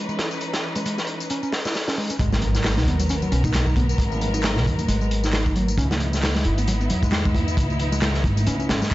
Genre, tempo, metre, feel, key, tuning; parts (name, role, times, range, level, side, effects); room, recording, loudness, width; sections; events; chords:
breakbeat, breaks; 134 BPM; 4/4; swing 56% on 16ths; G# minor; A4 = 440 Hz
clear symphonic string section; sustained chords; 0.0-8.9 s; E3 to B4; -30 LUFS; left 1 dB; sidechain pumping
picked electric bass; riff; 0.0-8.9 s; F#3 to E4; -28 LUFS; equal; tube saturation, ping-pong delay
electronic tambourine and handclaps; drums; 0.1-8.9 s; -33 LUFS; left 2 dB; overdrive
crunchy breakbeat drum kit; drums; 0.2-8.9 s; hi-hat, kick drum, snare drum; -25 LUFS; equal; high-pass filter on kick, high-pass filter on hats, high-pass filter on snare, high-pass filter on room
upright bass; bass; 2.2-8.8 s; G#1 to E2; -23 LUFS; equal; tube saturation
impact; sound effects; 2.2-4.0 s; -30 LUFS; equal
congas; percussion; 2.3-8.9 s; -33 LUFS; right 1 dB
studio reverb; nothing above 7.8 kHz; -20 LUFS; side -16 dB against mid
0.0-2.2 A section; 2.2-8.9 B section
filter sweep on picked electric bass 0.0-2.2; drop 2.2-8.9; impact 2.2-4.0
0.0 C#m9; 2.2 G#m9; 5.8 C#m9